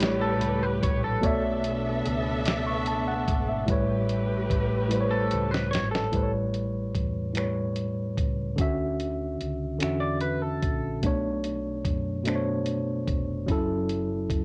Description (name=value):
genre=slow six-eight R&B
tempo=49 BPM (dotted quarters)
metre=6/8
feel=straight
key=unclear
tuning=A4 = 440 Hz
part: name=tine electric piano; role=accompaniment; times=0.0-14.4 s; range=A2 to D6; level=-30 LUFS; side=equal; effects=overdrive
part: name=warm studio string section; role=sustained chords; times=0.0-6.1 s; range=A3 to E5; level=-34 LUFS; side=equal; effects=none
part: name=woody fretless electric bass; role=bass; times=0.0-14.4 s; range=E#1 to F#2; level=-37 LUFS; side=equal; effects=transformer saturation
part: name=dusty soul sampler-style drum kit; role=drums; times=0.0-14.4 s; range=finger snaps, hi-hat, kick drum, snare drum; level=-32 LUFS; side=equal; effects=cassette tape
part: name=electric guitar at the edge of break-up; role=second line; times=0.2-1.4, 5.1-6.3, 10.0-11.0 s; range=A4 to D5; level=-33 LUFS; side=equal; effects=lush chorus
room=light reverb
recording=home recording on cassette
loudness=-27 LUFS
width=mono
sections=0.0-6.1 A section; 6.1-14.4 B section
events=drum fill 4.9-6.1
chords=0.0 A9; 1.2 Bm11; 3.7 A9; 8.6 Dmaj9; 11.0 Bm9; 13.5 F#m7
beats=0.01 | 1.23 2.46 | 3.68 4.91 | 6.13 7.36 | 8.58 9.80 | 11.03 12.25 | 13.48